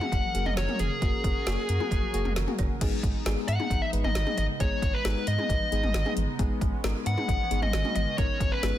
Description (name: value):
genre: synth-pop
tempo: 134 BPM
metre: 4/4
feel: straight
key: G# minor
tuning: A4 = 439 Hz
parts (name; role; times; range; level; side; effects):
- dark smooth lead guitar; melody; 0.0-8.8 s; G#4 to F#5; -31 LUFS; left 2 dB; overdrive
- FM electric piano with auto-pan; accompaniment; 0.0-8.8 s; G#3 to B4; -35 LUFS; left 5 dB; none
- chorused pulse-width pad; sustained chords; 0.0-8.8 s; F#3 to A#4; -38 LUFS; right 1 dB; none
- deep house drum kit; drums; 0.0-8.7 s; cowbell, crash cymbal, hi-hat, kick drum, snare drum, toms; -30 LUFS; right 1 dB; none
- round analog bass; bass; 0.1-8.7 s; F#1 to G#2; -30 LUFS; equal; none
room: little or no reverb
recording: dense, heavily limited modern master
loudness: -25 LUFS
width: side -12 dB against mid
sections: 0.0-2.8 A section; 2.8-8.8 A section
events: none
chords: 0.0 F#add9; 2.8 G#m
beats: 0.12 0.57 | 1.02 1.47 1.92 2.36 | 2.81 3.26 3.71 4.15 | 4.60 5.05 5.50 5.95 | 6.39 6.84 7.29 7.74 | 8.18 8.63